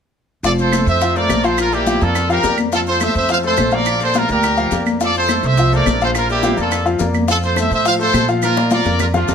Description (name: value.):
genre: latin, salsa.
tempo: 210 BPM.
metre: 4/4.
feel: straight.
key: F major.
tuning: A4 = 440 Hz.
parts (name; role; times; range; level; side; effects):
brilliant trumpet section; melody; 0.4-9.3 s; D4 to F5; -17 LUFS; right 1 dB; none.
clear concert grand piano; accompaniment; 0.4-9.3 s; F3 to F5; -20 LUFS; left 4 dB; none.
upright bass; bass; 0.4-9.3 s; F1 to Bb2; -20 LUFS; right 2 dB; none.
bongos; percussion; 0.4-9.3 s; none; -27 LUFS; left 6 dB; none.
congas; percussion; 0.4-9.3 s; none; -25 LUFS; left 2 dB; none.
maracas; percussion; 0.4-9.3 s; none; -31 LUFS; left 8 dB; none.
claves; percussion; 0.7-9.1 s; none; -28 LUFS; right 9 dB; none.
room: moderate large studio reverb, RT60 1.1 s.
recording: none.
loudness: -14 LUFS.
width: side -7 dB against mid.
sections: 0.4-9.3 A section.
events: drum fill 8.4-9.3.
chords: 0.4 F; 1.6 Bb; 2.7 F; 3.9 Bb; 5.0 F; 6.1 Bb; 7.3 F; 8.4 Bb.